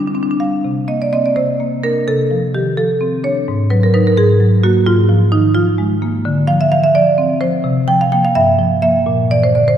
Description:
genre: classical, contemporary piece for solo marimba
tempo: 85 BPM (dotted quarters)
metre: 6/8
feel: rubato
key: D minor from 6.2 s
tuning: A4 = 441 Hz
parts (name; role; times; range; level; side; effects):
- marimba with medium hard mallets; solo; 0.0-9.8 s; G2 to G5; -12 LUFS; right 1 dB; none
room: wet church reverb, RT60 2.8 s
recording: minimal, uncompressed stereo recording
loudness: -12 LUFS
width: side -9 dB against mid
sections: 0.6-9.8 A section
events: none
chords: 0.0 D7sus4; 0.6 Cm11; 1.4 Bbadd9/C; 2.1 Dm7/C; 3.5 Ab5; 4.2 F#add9/G#; 4.9 Bb5/Ab; 6.2 Dm9; 7.6 C7sus4; 8.4 Gm7; 9.1 Bb

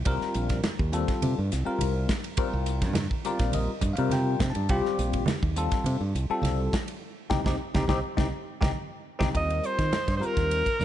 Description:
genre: electric jazz fusion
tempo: 104 BPM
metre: 4/4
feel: straight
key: C dorian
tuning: A4 = 440 Hz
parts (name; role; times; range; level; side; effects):
- modern bright fingered electric bass; bass; 0.0-10.8 s; Bb1 to Eb3; -28 LUFS; right 1 dB; none
- bell-like tine electric piano; accompaniment; 0.1-10.7 s; G3 to A5; -30 LUFS; left 4 dB; medium stereo tremolo, phaser
- modern studio drum kit; drums; 0.1-10.8 s; hi-hat, kick drum, ride cymbal, snare drum; -30 LUFS; equal; none
- congas; percussion; 0.1-10.8 s; none; -34 LUFS; right 5 dB; none
- clear alto saxophone; melody; 9.4-10.8 s; Bb4 to Eb5; -27 LUFS; right 1 dB; none
room: light reverb, small room ambience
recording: nothing above 10.5 kHz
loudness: -24 LUFS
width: side -12 dB against mid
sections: 0.0-9.3 A section; 9.3-10.8 B section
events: tine electric piano fill 3.0-4.7; band accent 7.0-9.3; drum fill 9.1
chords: 0.0 Cm7; 9.3 Ebadd9

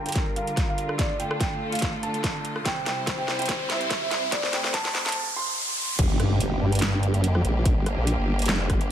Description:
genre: heavy wobble dubstep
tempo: 144 BPM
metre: 4/4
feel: swing 53% on 16ths, half-time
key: G dorian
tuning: A4 = 440 Hz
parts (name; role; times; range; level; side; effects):
- clear symphonic string section; sustained chords; 0.0-8.9 s; C3 to C5; -31 LUFS; equal; sidechain pumping, low-pass filter
- riser and impact; sound effects; 1.6-7.7 s; none; -31 LUFS; equal; none
- felt-muted upright piano; melody; 0.1-5.9 s; D5 to C6; -31 LUFS; right 2 dB; digital delay
- dubstep drum kit; drums; 0.1-8.9 s; crash cymbal, handclaps, hi-hat, rim click, snare drum; -29 LUFS; equal; high-pass filter on hats, high-pass filter on snare, high-pass filter on cymbals
- electronic kick drum; drums; 0.2-8.8 s; none; -26 LUFS; equal; overdrive
- formant-sweep wobble bass; bass; 6.0-8.9 s; F1 to G2; -23 LUFS; equal; chorus, overdrive
room: light reverb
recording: high-pass filter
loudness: -22 LUFS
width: side -10 dB against mid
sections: 0.0-6.0 A section; 6.0-8.9 B section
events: build-up 0.0-6.0; drum fill 0.0-5.2; filter sweep 0.0-6.0; riser 1.6-6.0; drop 6.0-8.9; impact 6.0-7.7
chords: 0.0 Gm7; 1.0 Dm; 2.7 C; 4.3 Am; 6.0 Gm

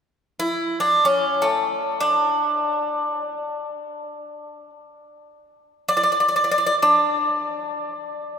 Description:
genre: greek folk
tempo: free time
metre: none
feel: none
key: unclear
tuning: A4 = 444 Hz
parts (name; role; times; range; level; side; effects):
- Greek bouzouki; melody; 0.4-8.4 s; A3 to D5; -19 LUFS; equal; none
room: wet cathedral reverb, RT60 4.5 s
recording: recorded in a church or concert hall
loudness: -19 LUFS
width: side -7 dB against mid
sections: 0.0-8.4 A section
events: none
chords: none

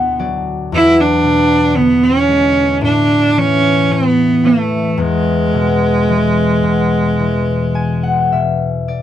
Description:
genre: celtic folk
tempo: 52-59 BPM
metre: 4/4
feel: rubato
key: E mixolydian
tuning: A4 = 443 Hz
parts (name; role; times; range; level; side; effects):
- bright cello; melody; 0.0-8.3 s; G#3 to E4; -13 LUFS; right 2 dB; none
- concert harp; accompaniment; 0.0-9.0 s; D2 to A5; -16 LUFS; left 4 dB; none
room: light reverb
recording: dry, close 1970s-style studio recording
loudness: -11 LUFS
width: side -11 dB against mid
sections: 0.0-9.0 A section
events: harp fill 0.0-0.7, 7.2-9.0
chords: 0.0 Bm7/D; 0.7 E7; 2.8 A5; 5.0 E

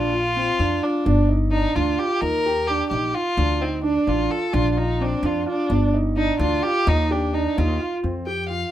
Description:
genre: contemporary instrumental, chamber music in an uneven meter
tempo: 258 BPM (eighths)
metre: 5/8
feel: straight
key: unclear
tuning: A4 = 441 Hz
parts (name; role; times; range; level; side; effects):
- rich violin; melody; 0.0-8.7 s; C4 to G5; -24 LUFS; left 2 dB; none
- dark grand piano; arpeggios; 0.0-8.7 s; C4 to G4; -24 LUFS; right 3 dB; none
- upright bass; bass; 0.0-8.6 s; G1 to F2; -23 LUFS; left 1 dB; none
room: moderate studio ambience, RT60 0.5 s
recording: none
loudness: -19 LUFS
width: side -12 dB against mid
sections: 0.0-8.0 A section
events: none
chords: 0.0 Bb; 1.1 G5; 2.2 Eb; 3.4 Dm; 4.5 Bb; 5.7 G5; 6.9 Eb; 8.0 F5

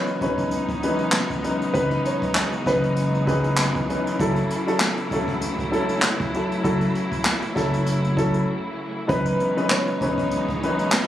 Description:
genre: hip hop, boom-bap hip-hop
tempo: 98 BPM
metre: 4/4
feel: swing 55% on 16ths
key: F# dorian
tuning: A4 = 441 Hz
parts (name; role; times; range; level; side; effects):
- warm upright piano; melody; 0.0-4.2, 9.1-10.9 s; G#4 to C#5; -28 LUFS; right 1 dB; high-pass filter, low-pass filter, analog delay
- dark baby grand piano; accompaniment; 0.0-11.1 s; F#2 to B4; -24 LUFS; left 1 dB; high-pass filter, low-pass filter
- clear studio string section; sustained chords; 0.0-11.1 s; C#3 to E4; -29 LUFS; equal; high-pass filter, low-pass filter
- jazz brush drum kit; drums; 0.1-11.1 s; handclaps, hi-hat, kick drum, snare drum; -26 LUFS; equal; none
- saturated sub bass; bass; 0.2-11.1 s; E1 to F#1; -26 LUFS; equal; none
room: light reverb, small room ambience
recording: recorded on a phone in the room, club reverb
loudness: -20 LUFS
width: side -12 dB against mid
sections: 0.0-11.1 A section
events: break 8.5-9.1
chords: 0.0 C#m9; 4.2 F#m7; 9.1 C#m9

